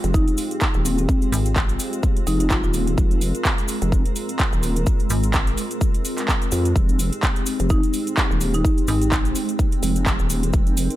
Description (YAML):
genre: bass house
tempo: 127 BPM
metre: 4/4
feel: swing 56% on 16ths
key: F minor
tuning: A4 = 443 Hz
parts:
  - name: dark analog pad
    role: sustained chords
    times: 0.0-11.0 s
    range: Ab3 to Bb4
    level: -31 LUFS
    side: right 2 dB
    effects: chorus, sidechain pumping
  - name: vowel-sweep wobble bass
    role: bass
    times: 0.0-10.9 s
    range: Eb1 to F2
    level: -21 LUFS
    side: equal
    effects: chorus, overdrive, sidechain pumping
  - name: big-room dance drum kit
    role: drums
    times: 0.0-11.0 s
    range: handclaps, hi-hat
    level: -26 LUFS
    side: right 1 dB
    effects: none
  - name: cabasa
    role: percussion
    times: 0.0-11.0 s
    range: none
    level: -33 LUFS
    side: left 4 dB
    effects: none
  - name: granular cloud pad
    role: texture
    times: 0.0-11.0 s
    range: Ab3 to G5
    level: -30 LUFS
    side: equal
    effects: built-in reverb, sidechain pumping
  - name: marimba with medium mallets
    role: melody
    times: 0.1-2.7, 7.7-9.4 s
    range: C4 to F4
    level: -27 LUFS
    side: left 1 dB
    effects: tape echo
  - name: electronic kick drum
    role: drums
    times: 0.1-10.6 s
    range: none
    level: -20 LUFS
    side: equal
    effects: none
  - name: metallic FM bass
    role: bass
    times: 1.3-1.8, 5.1-5.6, 8.9-9.3 s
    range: Ab1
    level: -22 LUFS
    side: equal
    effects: tube saturation, sidechain pumping
room: digital ambience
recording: none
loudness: -18 LUFS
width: side -15 dB against mid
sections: 0.0-11.0 A section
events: none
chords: 0.0 Fmadd9